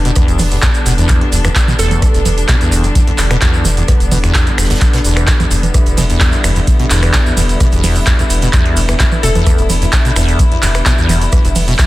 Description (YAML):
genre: acid house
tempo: 129 BPM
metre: 4/4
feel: straight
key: E minor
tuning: A4 = 440 Hz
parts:
  - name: warm chamber string section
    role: sustained chords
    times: 0.0-11.9 s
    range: D3 to E4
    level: -20 LUFS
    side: left 1 dB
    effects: sidechain pumping
  - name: round analog bass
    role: bass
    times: 0.0-11.7 s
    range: E1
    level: -16 LUFS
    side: equal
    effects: tube saturation, sidechain pumping
  - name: acid bass, saw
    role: riff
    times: 0.1-11.9 s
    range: E2 to B2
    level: -17 LUFS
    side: equal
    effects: tube saturation, lush chorus, sidechain pumping
  - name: booming analog drum machine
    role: drums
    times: 0.1-11.9 s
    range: congas, finger snaps, handclaps, hi-hat, ride cymbal, rim click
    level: -18 LUFS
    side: right 2 dB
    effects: none
  - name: tube shaker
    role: percussion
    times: 0.1-11.9 s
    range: none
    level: -25 LUFS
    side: right 2 dB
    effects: none
  - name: damped 70s drum kit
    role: drums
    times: 0.2-11.9 s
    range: hi-hat, snare drum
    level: -29 LUFS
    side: right 3 dB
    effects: none
  - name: electronic kick drum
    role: drums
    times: 0.2-11.9 s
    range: none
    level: -13 LUFS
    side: equal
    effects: none
  - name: glassy wavetable pluck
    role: melody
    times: 1.8-2.4, 9.2-9.9 s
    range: A4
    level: -22 LUFS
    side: right 1 dB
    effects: chorus, dub echo
room: studio reverb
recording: dense, heavily limited modern master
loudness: -10 LUFS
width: side -17 dB against mid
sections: 0.0-11.9 A section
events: none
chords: 0.0 Em7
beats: | 0.16 0.63 1.09 1.56 | 2.02 2.49 2.95 3.42 | 3.88 4.35 4.81 5.28 | 5.74 6.21 6.67 7.14 | 7.60 8.07 8.53 9.00 | 9.46 9.93 10.39 10.86 | 11.32 11.79